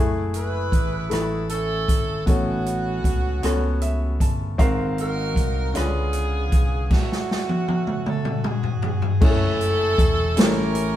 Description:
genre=slow gospel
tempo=52 BPM (dotted quarters)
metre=6/8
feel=straight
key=F# minor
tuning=A4 = 438 Hz
part: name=clear baby grand piano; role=accompaniment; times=0.0-11.0 s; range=G#2 to A5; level=-26 LUFS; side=left 1 dB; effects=none
part: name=fingered electric bass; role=bass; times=0.0-11.0 s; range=E1 to C#2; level=-26 LUFS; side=equal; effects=none
part: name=swinging big-band drum kit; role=drums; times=0.3-10.9 s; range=crash cymbal, hi-hat, kick drum, rim click, snare drum, toms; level=-21 LUFS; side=equal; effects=none
part: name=bright saxophone section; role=melody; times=0.4-11.0 s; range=A3 to B4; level=-26 LUFS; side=right 1 dB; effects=none
room=moderate stone room reverb, RT60 1.1 s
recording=band playing live in one room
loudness=-19 LUFS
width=side -12 dB against mid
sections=0.0-9.2 A section; 9.2-11.0 B section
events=grand piano fill 3.4-4.6; drum fill 6.9-9.2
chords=0.0 F#m9; 2.3 A69; 4.6 G#13; 5.7 C#7b9; 6.9 F#m; 8.1 C#sus4; 9.2 F#m7; 10.4 A7b9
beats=1.11 | 2.27 3.43 | 4.59 5.75 | 6.90 8.06 | 9.22 10.37

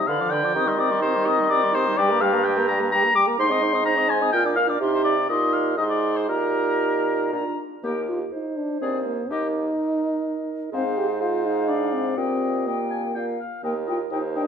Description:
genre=quick classical-period movement for wind quintet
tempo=125 BPM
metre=3/4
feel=rubato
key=Eb major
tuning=A4 = 443 Hz
part: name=silver concert flute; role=melody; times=0.0-14.4 s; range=Bb4 to F6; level=-30 LUFS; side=left 6 dB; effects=none
part: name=warm oboe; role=second line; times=0.0-14.5 s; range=G4 to D6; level=-24 LUFS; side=left 3 dB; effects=none
part: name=dark clarinet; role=accompaniment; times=0.0-14.5 s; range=Eb4 to Eb5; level=-29 LUFS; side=right 8 dB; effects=none
part: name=mellow French horn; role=accompaniment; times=0.0-14.5 s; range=D3 to G4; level=-28 LUFS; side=equal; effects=none
part: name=warm bassoon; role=bass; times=0.0-14.5 s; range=Eb2 to Eb3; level=-26 LUFS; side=right 2 dB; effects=none
room=moderate recital hall reverb, RT60 1.6 s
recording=none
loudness=-20 LUFS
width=side -7 dB against mid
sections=0.0-7.8 A section; 7.8-14.5 B section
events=none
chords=0.1 Bdim/D; 0.6 Cm/Eb; 2.0 Gm; 3.4 Ab; 4.3 Bb; 4.8 Cm; 5.8 Ab; 6.3 Eb/Bb; 7.3 Bb; 7.8 Eb; 8.8 Bb7/Eb; 9.3 Eb5; 10.7 Fm/Ab; 12.2 Eb/Bb; 13.2 Bb5; 13.6 Eb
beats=0.09 | 0.56 1.03 1.50 | 1.98 2.45 2.92 | 3.39 3.86 4.33 | 4.81 5.29 5.78 | 6.29 6.81 7.33 | 7.84 8.32 8.81 | 9.31 9.79 10.26 | 10.73 11.20 11.68 | 12.17 12.67 13.15 | 13.64 14.11

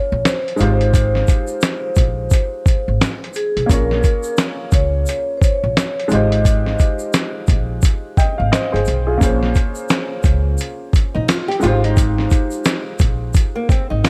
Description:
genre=lo-fi hip hop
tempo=87 BPM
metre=4/4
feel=swing 60% on 16ths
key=F minor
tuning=A4 = 443 Hz
part: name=vibraphone with soft mallets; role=melody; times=0.0-7.1 s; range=Ab4 to Eb5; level=-25 LUFS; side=equal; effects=analog delay
part: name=warm upright piano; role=accompaniment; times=0.0-14.1 s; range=Ab3 to G5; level=-26 LUFS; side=equal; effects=cassette tape
part: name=upright bass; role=bass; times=0.1-14.0 s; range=G1 to Db2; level=-21 LUFS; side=equal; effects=none
part: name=dusty soul sampler-style drum kit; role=drums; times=0.3-14.1 s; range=finger snaps, hi-hat, kick drum, snare drum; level=-18 LUFS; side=equal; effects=vintage 12-bit sampler grit
part: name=egg shaker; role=percussion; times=0.3-14.1 s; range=none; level=-36 LUFS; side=equal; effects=none
part: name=nylon-string guitar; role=second line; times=11.1-14.1 s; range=Bb3 to G4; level=-24 LUFS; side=equal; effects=analog delay
room=small room ambience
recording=none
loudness=-17 LUFS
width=mono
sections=0.0-14.1 A section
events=none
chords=0.0 Bbm7; 0.6 Fm7/Ab; 3.7 Bbm7; 6.1 Fm7/Ab; 9.2 Bbm7; 11.6 Fm7/Ab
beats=0.24 | 0.93 1.62 2.31 3.00 | 3.69 4.38 5.07 5.76 | 6.45 7.14 7.83 8.52 | 9.21 9.90 10.59 11.28 | 11.97 12.66 13.35 14.04

